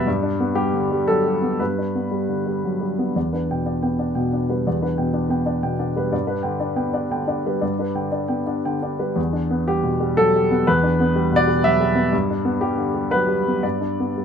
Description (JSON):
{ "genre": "neoclassical minimalist piano", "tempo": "113-124 BPM", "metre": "3/4", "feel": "rubato", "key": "E minor", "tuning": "A4 = 440 Hz", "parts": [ { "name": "warm baby grand piano", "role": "solo", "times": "0.0-14.2 s", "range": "E2 to G5", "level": "-19 LUFS", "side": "equal", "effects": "none" } ], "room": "moderate studio reverb, RT60 0.5 s", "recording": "band playing live in one room", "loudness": "-19 LUFS", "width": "side -7 dB against mid", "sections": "0.0-3.2 A section; 3.2-9.2 B section; 9.2-14.2 A section", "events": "none", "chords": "0.1 G; 3.2 Em7; 6.1 G; 9.2 Em7; 12.1 G" }